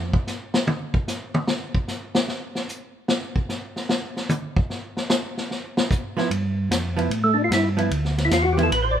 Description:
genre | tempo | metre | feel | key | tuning
soul jazz organ trio | 149 BPM | 4/4 | swing 67% on 8ths | unclear | A4 = 440 Hz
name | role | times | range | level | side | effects
mellow tonewheel organ | bass | 0.0-0.1, 6.3-9.0 s | A1 to A2 | -23 LUFS | right 1 dB | chorus vibrato, slow rotary speaker
vintage drum kit | drums | 0.1-8.8 s | hi-hat, kick drum, ride cymbal, snare drum, toms | -24 LUFS | left 1 dB | none
hollow-body jazz guitar | accompaniment | 6.2-8.7 s | F3 to E4 | -26 LUFS | right 4 dB | none
percussive tonewheel organ | melody | 7.2-9.0 s | A3 to D5 | -20 LUFS | equal | slow rotary speaker, chorus vibrato
room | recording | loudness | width
light reverb | minimal, uncompressed stereo recording | -21 LUFS | side -9 dB against mid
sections
0.0-9.0 A section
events
tonewheel organ solo 0.0-9.0; drum solo 0.0-6.3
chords
0.0 N.C.; 3.1 E5; 6.3 G13

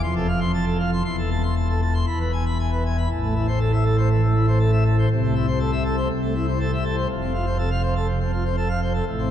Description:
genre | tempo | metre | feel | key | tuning
classical, organ toccata | 120 BPM | 4/4 | straight | A minor | A4 = 440 Hz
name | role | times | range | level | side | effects
pipe organ, plenum | solo | 0.0-9.3 s | E1 to C6 | -19 LUFS | equal | none
room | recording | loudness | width
wet cathedral reverb, RT60 4.8 s | dark, warm production | -19 LUFS | side -10 dB against mid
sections
0.0-3.1 A section; 3.1-9.3 B section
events
none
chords
0.0 F; 1.0 Am/E; 2.1 E; 3.1 Am; 5.1 Am/C; 7.1 F

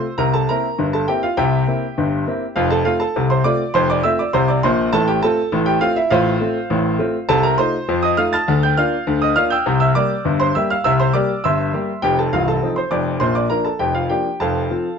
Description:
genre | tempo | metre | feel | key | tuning
ragtime piano | 101 BPM | 2/4 | straight | F major, Bb major from 7.3 s | A4 = 440 Hz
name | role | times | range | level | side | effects
clear grand piano | solo | 0.0-15.0 s | C1 to A6 | -16 LUFS | equal | none
room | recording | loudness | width
moderate studio reverb, RT60 0.5 s | dark, warm production, nothing above 7.7 kHz | -16 LUFS | side -6 dB against mid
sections
0.0-15.0 A section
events
none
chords
0.2 C7; 2.6 F; 4.9 F/A; 7.3 F7/C; 8.5 Bb/D; 9.7 C7; 12.0 F7; 13.2 Bb; 14.4 F

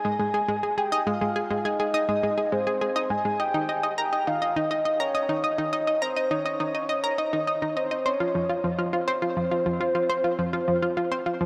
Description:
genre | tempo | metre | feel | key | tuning
ambient | 103 BPM | 4/4 | straight | unclear | A4 = 441 Hz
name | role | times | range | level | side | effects
soft octave-layered synth lead | melody | 0.0-11.5 s | C5 to Ab5 | -29 LUFS | equal | chorus, analog delay
analog pluck | riff | 0.0-11.5 s | F3 to Bb5 | -28 LUFS | equal | chorus, analog delay
room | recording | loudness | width
wet huge ambient reverb, RT60 8.5 s | none | -26 LUFS | mono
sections
0.0-11.5 A section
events
none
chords
0.0 Ab; 3.4 Eb; 8.1 F5

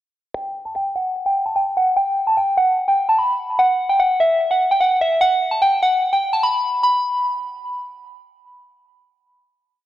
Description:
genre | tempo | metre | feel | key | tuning
hip hop | 148 BPM | 4/4 | half-time | unclear | A4 = 441 Hz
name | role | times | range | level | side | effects
soft synth bell | solo | 0.3-8.0 s | E5 to B5 | -16 LUFS | equal | chorus, low-pass filter, analog delay
room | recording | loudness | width
light reverb, digital ambience | dry, gritty hardware recording | -16 LUFS | side -13 dB against mid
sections
0.3-6.8 breakdown; 6.8-9.9 final note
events
filter sweep on synth bell 0.3-6.8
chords
none

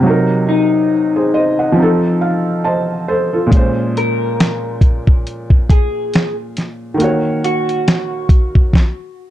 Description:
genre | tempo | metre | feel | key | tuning
lo-fi hip hop | 69 BPM | 4/4 | swing 56% on 16ths | unclear | A4 = 439 Hz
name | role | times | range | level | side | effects
felt-muted upright piano | accompaniment | 0.0-8.8 s | Bb2 to A5 | -16 LUFS | right 1 dB | low-pass filter
electric guitar at the edge of break-up | melody | 0.5-9.3 s | Eb4 to Bb4 | -19 LUFS | left 2 dB | lush chorus, low-pass filter
dusty soul sampler-style drum kit | drums | 3.5-9.0 s | finger snaps, hi-hat, kick drum, snare drum | -11 LUFS | equal | none
room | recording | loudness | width
light reverb | dark, warm production | -12 LUFS | side -13 dB against mid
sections
0.0-9.3 A section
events
stop 8.7-9.3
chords
0.0 Cm7b5; 1.8 F7; 3.5 Bbm9; 7.0 Ebm7; 8.7 N.C.

